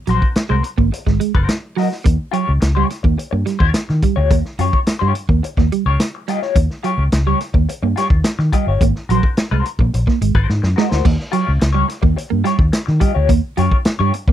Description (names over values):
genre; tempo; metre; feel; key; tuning
funk; 107 BPM; 4/4; straight; Eb mixolydian; A4 = 439 Hz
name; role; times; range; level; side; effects
electric guitar at the edge of break-up; accompaniment; 0.1-14.3 s; F4 to Eb5; -22 LUFS; left 8 dB; wah, tremolo
clean electric guitar; riff; 0.1-14.3 s; Gb3 to Bb3; -20 LUFS; right 11 dB; analog chorus
vintage muted fingered electric bass; bass; 0.1-14.3 s; Gb1 to Eb3; -17 LUFS; equal; none
vintage drum kit; drums; 0.1-14.3 s; crash cymbal, hi-hat, kick drum, snare drum; -17 LUFS; equal; none
room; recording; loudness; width
little or no reverb; dry, close 1970s-style studio recording; -14 LUFS; side -12 dB against mid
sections
0.0-11.1 A section; 11.1-14.3 B section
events
drum fill 10.5-11.1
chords
0.0 Ab9; 2.1 Eb9; 8.8 Ab9; 11.1 Eb9